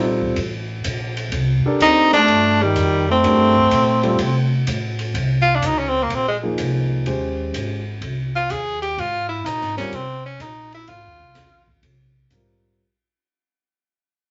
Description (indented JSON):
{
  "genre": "modal jazz",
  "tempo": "126 BPM",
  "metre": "4/4",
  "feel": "swing 68% on 8ths",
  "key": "C dorian",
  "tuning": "A4 = 440 Hz",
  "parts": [
    { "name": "bright tenor saxophone", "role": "melody", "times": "0.0-11.7 s", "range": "G3 to Ab4", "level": "-20 LUFS", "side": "equal", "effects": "none" },
    { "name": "bright trombone", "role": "second line", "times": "0.0-4.6 s", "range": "Eb3 to Eb4", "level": "-23 LUFS", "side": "equal", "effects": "none" },
    { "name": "dark grand piano", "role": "accompaniment", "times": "0.0-12.8 s", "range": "F3 to C5", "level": "-25 LUFS", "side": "equal", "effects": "none" },
    { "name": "upright bass", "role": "bass", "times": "0.0-12.8 s", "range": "Ab1 to C3", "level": "-26 LUFS", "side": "equal", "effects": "none" },
    { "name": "open jazz drum kit", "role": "drums", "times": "0.2-12.5 s", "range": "hi-hat, kick drum, ride cymbal, snare drum", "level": "-33 LUFS", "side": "equal", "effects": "none" }
  ],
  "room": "wet studio reverb, RT60 0.5 s",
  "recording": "nothing above 7.7 kHz",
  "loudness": "-19 LUFS",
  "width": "mono",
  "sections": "0.0-5.1 A section; 5.1-12.8 B section",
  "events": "fade-out 5.1-12.8; tenor saxophone solo 5.1-12.8",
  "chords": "0.0 Csus2; 5.1 Ab",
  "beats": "0.37 0.85 | 1.32 1.80 2.27 2.75 | 3.23 3.71 4.18 4.66 | 5.14 5.62 6.09 6.57 | 7.05 7.53 8.01 8.49 | 8.96 9.44 9.92 10.40 | 10.88 11.35 11.83 12.31"
}